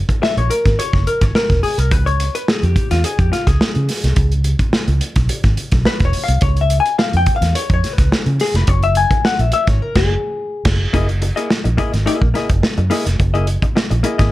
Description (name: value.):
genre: funk.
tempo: 106 BPM.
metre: 4/4.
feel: straight.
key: unclear.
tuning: A4 = 440 Hz.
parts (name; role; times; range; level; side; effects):
vintage muted fingered electric bass; bass; 0.0-14.3 s; Fb1 to Db3; -16 LUFS; equal; none.
warm soul drum kit; drums; 0.1-14.3 s; crash cymbal, hi-hat, kick drum, snare drum; -18 LUFS; equal; none.
vintage hollow-body jazz guitar; accompaniment; 0.2-14.3 s; Bb3 to Ab5; -20 LUFS; left 4 dB; none.
room: little or no reverb.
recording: none.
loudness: -14 LUFS.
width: side -16 dB against mid.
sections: 0.0-10.9 A section; 10.9-14.3 B section.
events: hollow-body jazz guitar solo 0.0-10.9; band accent 9.8-10.9.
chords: 0.0 Gb9 (rootless); 1.9 Db7; 8.7 Gbsus2; 10.9 Gb13.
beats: 0.22 0.79 1.35 | 1.92 2.48 3.04 3.61 | 4.17 4.74 5.30 5.86 | 6.43 6.99 7.55 8.12 | 8.68 9.25 9.81 10.38 | 10.94 11.50 12.07 12.63 | 13.20 13.76.